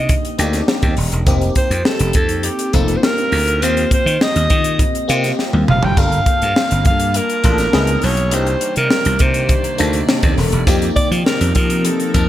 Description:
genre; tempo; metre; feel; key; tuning
polished 1980s jazz-funk pop; 102 BPM; 4/4; straight; C dorian; A4 = 440 Hz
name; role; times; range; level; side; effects
breathy alto saxophone; melody; 0.0-12.3 s; G4 to G5; -20 LUFS; right 1 dB; none
FM electric piano; accompaniment; 0.0-12.3 s; Bb3 to A5; -23 LUFS; left 2 dB; phaser, ensemble chorus
slap bass; bass; 0.0-12.3 s; Eb1 to F3; -17 LUFS; equal; none
crisp fusion drum kit; drums; 0.1-12.3 s; hi-hat, kick drum, snare drum, splash cymbal, toms; -17 LUFS; equal; gated reverb
icy glass pad; sustained chords; 6.7-12.3 s; C3 to A5; -26 LUFS; left 2 dB; chorus, built-in reverb
room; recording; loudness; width
light reverb; bright 1980s-style digital production; -13 LUFS; side -13 dB against mid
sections
0.0-12.3 A section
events
drum fill 5.4-6.0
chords
0.0 Cm9 (rootless); 1.3 F7sus4; 3.6 Eb6; 6.0 Gm9; 7.7 Dbm9; 8.3 Cm9; 10.7 F7sus4

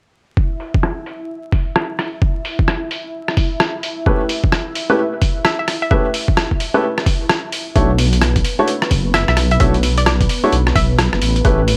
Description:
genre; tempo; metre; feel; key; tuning
UK garage, two-step garage; 130 BPM; 4/4; swing 62% on 16ths; unclear; A4 = 439 Hz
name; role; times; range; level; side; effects
warm analog pad; sustained chords; 0.4-11.8 s; B3 to E5; -30 LUFS; equal; chorus, sidechain pumping
electronic kick drum; drums; 0.4-11.6 s; none; -19 LUFS; equal; overdrive, studio reverb
boom bap sampler-style drum kit; drums; 0.6-11.8 s; hi-hat, rim click; -22 LUFS; equal; overdrive, low-pass filter on hats, studio reverb, low-pass filter on snare
warm baby grand piano; stabs; 4.1-11.6 s; A3 to C#5; -20 LUFS; equal; tape echo
hollow square pluck; melody; 5.4-6.0, 9.1-11.3 s; D5 to E5; -24 LUFS; equal; chorus, tape echo
dark detuned saw bass; bass; 7.8-11.8 s; F#1 to B1; -18 LUFS; equal; none
room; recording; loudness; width
little or no reverb; dry, gritty hardware recording, vinyl crackle; -17 LUFS; mono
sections
0.4-7.8 A section; 7.8-11.8 B section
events
filter sweep on drum 0.4-7.8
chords
0.4 N.C.; 7.8 Bm11; 11.2 A7

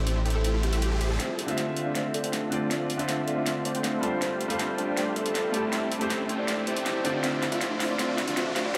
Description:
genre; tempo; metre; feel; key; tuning
future bass; 159 BPM; 4/4; half-time; D minor; A4 = 438 Hz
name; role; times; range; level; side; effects
unison pluck; arpeggios; 0.0-1.1, 7.2-8.8 s; C4 to E5; -42 LUFS; equal; none
supersaw chords; riff; 0.0-8.8 s; A3 to A5; -34 LUFS; equal; low-pass filter, analog delay
fat analog bass; bass; 0.0-1.2 s; A1; -28 LUFS; equal; none
riser; sound effects; 0.0-8.8 s; none; -40 LUFS; equal; none
pop drum kit; drums; 0.1-8.8 s; hi-hat, snare drum; -35 LUFS; equal; overdrive, high-pass filter on hats, high-pass filter on snare, high-pass filter on room
soft octave-layered synth lead; melody; 0.3-8.8 s; G4 to E5; -36 LUFS; equal; chorus, phaser, tape echo
felt-muted upright piano; accompaniment; 1.5-7.4 s; D3 to E5; -34 LUFS; equal; analog delay
room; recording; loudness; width
wet cathedral reverb, RT60 6.0 s; dreamy mix soaked in reverb, high-pass filter; -28 LUFS; mono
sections
0.0-1.2 A section; 1.2-8.8 B section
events
riser 0.0-1.2, 1.2-8.8; build-up 1.2-8.8; drum fill 1.2-8.8; filter sweep on supersaw synth 1.2-8.8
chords
0.0 Am7; 1.2 Dm9; 4.2 G9sus4; 5.7 Am7; 7.2 Dm9

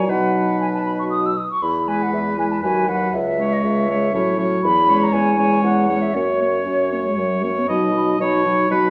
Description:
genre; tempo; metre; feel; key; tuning
quick classical-period movement for wind quintet; 118 BPM; 3/4; straight; B major from 4.6 s; A4 = 441 Hz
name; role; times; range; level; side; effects
mellow concert flute; melody; 0.0-8.9 s; C#5 to E6; -24 LUFS; equal; none
warm oboe; second line; 0.0-8.9 s; B4 to D#5; -26 LUFS; equal; none
dark French horn; accompaniment; 0.0-8.9 s; F#3 to C#4; -25 LUFS; equal; none
dark clarinet; accompaniment; 0.0-8.9 s; C#4 to F#4; -30 LUFS; equal; none
warm bassoon; bass; 0.0-8.9 s; C#2 to B2; -26 LUFS; equal; none
room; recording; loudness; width
moderate recital hall reverb, RT60 1.7 s; worn, warbling old tape, cassette tape, warbly pitch drift, studio ambience, faint mains hum; -19 LUFS; mono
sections
0.0-7.7 A section; 7.7-8.9 B section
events
none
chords
0.1 B; 1.6 E; 2.6 B/D#; 3.1 C#m; 4.1 F#m7/A; 4.6 C#m/E; 6.2 F#; 7.7 B

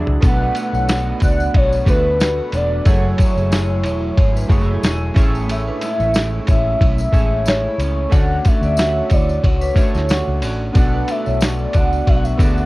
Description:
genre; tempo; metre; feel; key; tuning
indie pop, bedroom pop; 91 BPM; 4/4; swing 55% on 16ths; unclear; A4 = 440 Hz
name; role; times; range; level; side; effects
vibraphone with hard mallets; second line; 0.0-12.6 s; D4 to F#5; -29 LUFS; right 3 dB; lush chorus, cassette tape, tape echo
chorused retro synth keys; accompaniment; 0.0-12.7 s; F#3 to D5; -26 LUFS; right 2 dB; cassette tape
electric guitar through a small old amp; accompaniment; 0.0-12.7 s; A2 to G#4; -26 LUFS; equal; lush chorus, warbly pitch drift, cassette tape
vintage muted fingered electric bass; bass; 0.0-12.7 s; E1 to D2; -20 LUFS; equal; none
lo-fi sampler-style drum kit; drums; 0.1-12.6 s; hi-hat, kick drum, ride cymbal, snare drum, toms; -16 LUFS; equal; vintage 12-bit sampler grit
tambourine; percussion; 0.2-12.7 s; none; -39 LUFS; left 4 dB; none
warm velvety synth lead; melody; 0.3-12.7 s; B4 to F#5; -22 LUFS; equal; wide subtle chorus, cassette tape, tape echo
room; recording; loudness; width
little or no reverb; home recording on cassette; -14 LUFS; side -20 dB against mid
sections
0.2-12.7 A section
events
drum fill 0.0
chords
0.2 Bm7; 2.9 F#m9; 5.2 Amaj7; 8.1 Dmaj7; 10.8 Bm7

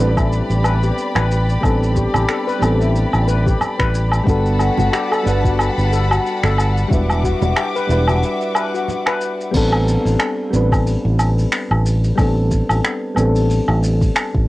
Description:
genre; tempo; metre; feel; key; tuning
sunset chillout; 91 BPM; 4/4; swing 56% on 16ths; A dorian; A4 = 440 Hz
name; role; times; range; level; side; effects
soft electric-piano-like synth keys; accompaniment; 0.0-14.5 s; G3 to F#5; -21 LUFS; equal; chorus, auto-pan, cassette tape, analog delay
rich studio string section; sustained chords; 0.0-9.5 s; G3 to D6; -25 LUFS; left 2 dB; cassette tape, plate reverb
fingered electric bass; bass; 0.0-14.5 s; E1 to A1; -17 LUFS; equal; none
steel pan; arpeggios; 0.2-9.2 s; E4 to B4; -24 LUFS; left 4 dB; vintage 12-bit sampler grit, low-pass filter, cassette tape, analog delay
electronic kick drum; drums; 0.2-14.5 s; none; -19 LUFS; equal; cassette tape
soft brush drum kit; drums; 0.2-14.3 s; crash cymbal, finger snaps, hi-hat, shaker, woodblock; -22 LUFS; equal; cassette tape
congas; percussion; 1.2-9.0 s; none; -26 LUFS; right 6 dB; none
room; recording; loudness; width
moderate small room reverb, RT60 0.5 s; home recording on cassette; -15 LUFS; side -18 dB against mid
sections
0.0-9.5 A section; 9.5-14.5 A section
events
filter sweep on synth keys 0.0-9.5; break 8.2-9.5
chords
0.0 Am11; 4.3 Gmaj9; 6.9 Em9; 9.5 Am11

